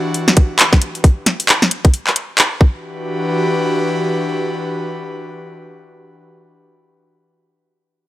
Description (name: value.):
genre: UK garage, two-step garage.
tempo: 134 BPM.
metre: 4/4.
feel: swing 60% on 16ths.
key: E minor.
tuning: A4 = 440 Hz.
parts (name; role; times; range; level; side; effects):
airy breathy pad; sustained chords; 0.0-6.2 s; E3 to B4; -20 LUFS; left 1 dB; chorus, sidechain pumping.
garage drum kit; drums; 0.1-2.5 s; handclaps, hi-hat, snare drum; -12 LUFS; equal; none.
electronic kick drum; drums; 0.4-2.7 s; none; -10 LUFS; equal; none.
room: little or no reverb.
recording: dry, gritty hardware recording.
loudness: -13 LUFS.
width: side -15 dB against mid.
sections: 0.0-2.8 A section; 2.8-6.4 B section.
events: none.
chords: 0.0 Em7; 1.0 N.C.; 2.6 Em7.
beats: 0.14 0.59 | 1.04 1.49 1.94 2.38 | 2.83 3.28 3.73 4.17 | 4.62 5.07 5.52 5.96.